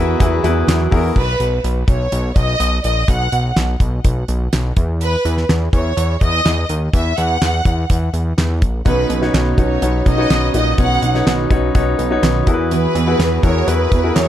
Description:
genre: piano-driven pop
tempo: 125 BPM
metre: 4/4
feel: straight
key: B major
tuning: A4 = 439 Hz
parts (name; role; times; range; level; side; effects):
- warm studio violin section; melody; 0.0-14.3 s; B4 to F#5; -21 LUFS; right 1 dB; none
- clear concert grand piano; accompaniment; 0.0-1.2, 8.9-14.3 s; B2 to D#5; -20 LUFS; left 5 dB; none
- picked steel-string acoustic guitar; riff; 0.0-1.2, 8.8-14.3 s; B2 to B4; -22 LUFS; right 8 dB; none
- fat analog bass; bass; 0.0-14.3 s; A#1 to E2; -18 LUFS; equal; none
- damped 70s drum kit; drums; 0.2-14.3 s; crash cymbal, handclaps, hi-hat, kick drum, snare drum; -17 LUFS; equal; none
room: small room ambience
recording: dark, warm production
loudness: -14 LUFS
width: side -11 dB against mid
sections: 0.0-1.2 A section; 1.2-14.3 B section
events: none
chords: 0.0 Eadd9; 1.2 N.C.; 8.9 Badd9; 12.5 Eadd9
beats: 0.20 0.68 | 1.16 1.64 2.12 2.60 | 3.08 3.56 4.04 4.53 | 5.01 5.49 5.97 6.45 | 6.93 7.42 7.90 8.38 | 8.86 9.34 9.82 10.31 | 10.79 11.27 11.75 12.23 | 12.71 13.20 13.68 14.16

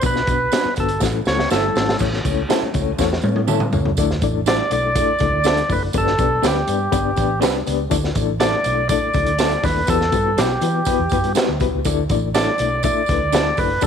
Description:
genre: uptempo 1960s-style soul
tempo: 122 BPM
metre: 4/4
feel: straight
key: D major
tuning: A4 = 442 Hz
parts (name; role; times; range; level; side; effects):
- percussive tonewheel organ; melody; 0.0-13.9 s; G4 to D5; -21 LUFS; right 1 dB; overdrive
- reed electric piano; accompaniment; 0.0-13.9 s; A3 to E5; -23 LUFS; left 13 dB; fast tremolo
- vintage muted fingered electric bass; bass; 0.0-13.9 s; F#1 to E3; -24 LUFS; right 1 dB; none
- crunchy breakbeat drum kit; drums; 0.0-13.9 s; crash cymbal, hi-hat, kick drum, snare drum, toms; -22 LUFS; right 1 dB; none
- tambourine; percussion; 0.0-13.9 s; none; -34 LUFS; right 18 dB; none
- electric guitar through a small old amp; stabs; 0.5-13.5 s; G3 to B4; -28 LUFS; right 14 dB; none
- hollow-body jazz guitar; riff; 1.4-2.0 s; G3 to A4; -30 LUFS; left 12 dB; none
room: light reverb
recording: 1960s-style stereo with parts hard left and right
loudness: -16 LUFS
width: side -7 dB against mid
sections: 0.0-2.0 A section; 2.0-4.0 B section; 4.0-13.9 C section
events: tonewheel organ solo 0.0-2.0; drum fill 1.0-2.0, 3.0-4.0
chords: 0.0 Bm; 1.0 A; 4.0 Dsus2; 5.9 G; 7.9 Dsus2; 9.9 Emadd9; 11.9 Dsus2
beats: | 0.03 0.52 1.01 1.51 | 2.00 2.49 2.99 3.48 | 3.97 4.46 4.96 5.45 | 5.94 6.43 6.93 7.42 | 7.91 8.41 8.90 9.39 | 9.88 10.38 10.87 11.36 | 11.86 12.35 12.84 13.33 | 13.83

